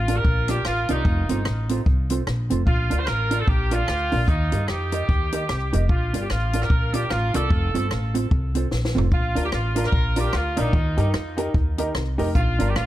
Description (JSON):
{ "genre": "ska", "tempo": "149 BPM", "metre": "4/4", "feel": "swing 60% on 8ths", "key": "Bb major", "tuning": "A4 = 440 Hz", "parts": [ { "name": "clear horn section", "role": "melody", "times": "0.0-12.9 s", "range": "Eb4 to C5", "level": "-27 LUFS", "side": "right 1 dB", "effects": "analog delay" }, { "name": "upright bass", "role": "bass", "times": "0.0-12.9 s", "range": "F1 to G2", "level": "-24 LUFS", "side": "equal", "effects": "none" }, { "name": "mellow electric guitar", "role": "accompaniment", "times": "0.1-12.7 s", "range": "C4 to Eb5", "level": "-28 LUFS", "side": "right 3 dB", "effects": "none" }, { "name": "compact cocktail drum kit", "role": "drums", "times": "0.1-12.9 s", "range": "hi-hat, kick drum, rim click, snare drum, toms", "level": "-23 LUFS", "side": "equal", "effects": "none" }, { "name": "warm upright piano", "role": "stabs", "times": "9.4-12.7 s", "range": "D4 to Bb4", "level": "-30 LUFS", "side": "left 1 dB", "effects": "none" } ], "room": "light reverb, small room ambience", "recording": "none", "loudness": "-20 LUFS", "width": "side -14 dB against mid", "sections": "0.0-12.9 A section", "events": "drum fill 8.7-9.1", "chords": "0.0 Bb; 1.1 F; 2.7 Bb; 4.3 Eb; 5.9 Bb; 7.5 F; 9.1 Bb; 10.7 Eb; 12.3 Bb" }